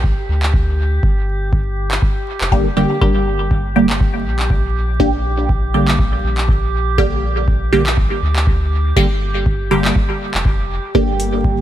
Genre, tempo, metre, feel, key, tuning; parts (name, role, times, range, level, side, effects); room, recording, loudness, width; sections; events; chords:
dub techno; 121 BPM; 4/4; swing 56% on 16ths; G minor; A4 = 440 Hz
soft dub sub bass; bass; 0.0-11.6 s; F1 to D2; -19 LUFS; equal; tube saturation, sidechain pumping
electronic kick drum; drums; 0.0-11.6 s; -17 LUFS; equal
drifting glass-harmonics texture; texture; 0.0-11.6 s; Bb3 to G4; -26 LUFS; right 2 dB; chorus, built-in reverb, sidechain pumping
booming analog drum machine; drums; 0.4-11.3 s; handclaps, hi-hat; -24 LUFS; equal; dub echo
filtered dub chord stab; stabs; 2.5-11.6 s; D3 to G4; -18 LUFS; right 1 dB; phaser, sidechain pumping, dub echo
warbly tape-like pad; sustained chords; 11.2-11.6 s; D3 to G4; -23 LUFS; equal; chorus, built-in reverb, phaser, sidechain pumping
light reverb; vinyl crackle; -14 LUFS; side -12 dB against mid
0.0-11.6 A section
0.0 Gm